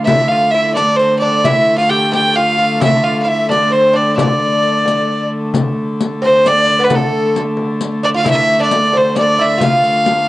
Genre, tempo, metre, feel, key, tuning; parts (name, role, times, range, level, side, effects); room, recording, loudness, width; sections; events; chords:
medieval dance; 132 BPM; 3/4; straight; D minor; A4 = 441 Hz
clear fiddle; melody; 0.0-10.3 s; A4 to G5; -13 LUFS; right 1 dB; cassette tape
rich hurdy-gurdy; drone; 0.0-10.3 s; D3 to A3; -19 LUFS; equal; cassette tape
breathy tenor recorder; second line; 0.1-10.3 s; A4 to G5; -22 LUFS; left 4 dB
lute; second line; 0.1-10.3 s; A3 to G4; -22 LUFS; right 2 dB; cassette tape
frame drum; percussion; 0.1-10.2 s; -20 LUFS; left 3 dB
riq; percussion; 0.1-10.3 s; -22 LUFS; left 5 dB
moderate spring reverb, RT60 1.4 s, studio reverb; home recording on cassette, nothing above 10.5 kHz; -11 LUFS; side -17 dB against mid
0.0-5.6 A section; 5.6-10.3 B section